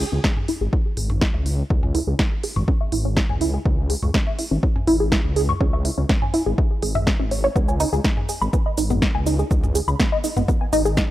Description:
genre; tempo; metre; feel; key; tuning
melodic techno; 123 BPM; 4/4; straight; C# minor; A4 = 442 Hz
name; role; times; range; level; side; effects
tight sequenced synth; arpeggios; 0.0-10.9 s; B3 to C#6; -24 LUFS; equal; chorus, phaser, sidechain pumping, analog delay
swelling detuned saw bass; bass; 0.0-11.0 s; G#1 to C#2; -23 LUFS; equal; sidechain pumping
deep house drum kit; drums; 0.0-11.1 s; hi-hat, shaker, snare drum, toms; -26 LUFS; equal; sidechain pumping on hats, sidechain pumping on toms, sidechain pumping on cymbals, sidechain pumping on perc
electronic kick drum; drums; 0.2-11.1 s; none; -21 LUFS; equal; none
room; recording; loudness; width
little or no reverb; dry, gritty hardware recording, transformer saturation; -18 LUFS; side -14 dB against mid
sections
0.0-11.1 A section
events
filter sweep on synth arpeggio sound 0.0-11.1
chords
0.0 C#m; 7.6 G#5

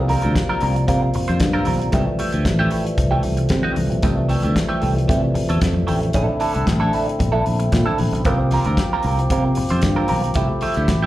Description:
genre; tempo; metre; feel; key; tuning
disco; 114 BPM; 4/4; straight; F major; A4 = 441 Hz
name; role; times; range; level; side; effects
clean electric guitar; accompaniment; 0.0-11.1 s; A3 to C5; -24 LUFS; right 3 dB; wah, wide subtle chorus, slapback echo
percussive tonewheel organ; sustained chords; 0.0-11.1 s; C3 to G4; -24 LUFS; equal; overdrive, wide subtle chorus
fingered electric bass; bass; 0.0-11.1 s; A1 to C3; -20 LUFS; equal; none
damped 70s drum kit; drums; 0.1-11.0 s; hi-hat, kick drum, snare drum; -23 LUFS; equal; none
congas; percussion; 0.1-11.0 s; none; -29 LUFS; left 4 dB; none
room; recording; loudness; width
light reverb; live gig heard through the venue's PA, club reverb; -16 LUFS; side -15 dB against mid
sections
0.0-11.1 A section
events
none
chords
0.0 C7sus4; 1.9 Fmaj9; 6.1 Bbmaj9#11; 8.3 C7sus4; 10.4 Fmaj9

